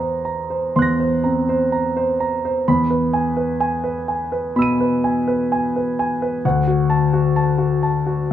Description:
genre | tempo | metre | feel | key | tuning
classical, impressionist solo piano | 63 BPM | 4/4 | rubato | E lydian | A4 = 439 Hz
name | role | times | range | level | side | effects
warm grand piano | solo | 0.0-8.3 s | D2 to D#7 | -17 LUFS | equal | none
room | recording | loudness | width
light reverb | close, detailed microphones | -17 LUFS | side -11 dB against mid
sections
0.0-8.3 A section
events
none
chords
0.0 F#7#11/E; 2.7 Emaj7; 6.4 D

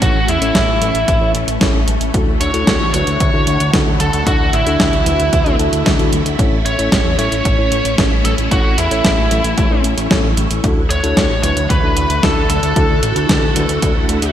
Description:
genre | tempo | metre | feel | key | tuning
italo disco | 113 BPM | 4/4 | straight | unclear | A4 = 440 Hz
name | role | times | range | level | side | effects
biting lead guitar | melody | 0.0-14.3 s | E4 to C#5 | -19 LUFS | right 1 dB | overdrive, digital delay
phased string machine | sustained chords | 0.0-14.3 s | D3 to F#4 | -22 LUFS | equal | ensemble chorus, phaser, vintage 12-bit sampler grit
mellow tine electric piano | stabs | 0.0-14.2 s | C#4 to E5 | -23 LUFS | left 3 dB | low-pass filter, digital delay
fat analog bass | bass | 0.0-14.3 s | A1 to E2 | -20 LUFS | equal | tube saturation
clean 12-bit digital drum machine | drums | 0.0-14.3 s | hi-hat, snare drum | -19 LUFS | right 1 dB | gated reverb
electronic kick drum | drums | 0.0-13.9 s | none | -18 LUFS | equal | none
room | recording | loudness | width
moderate lush hall reverb, RT60 2.6 s | bright 1980s-style digital production | -12 LUFS | side -10 dB against mid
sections
0.0-14.3 A section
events
filter sweep on tine electric piano 0.0-14.3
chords
0.0 A; 2.1 Dadd9; 6.4 A; 10.6 Dadd9

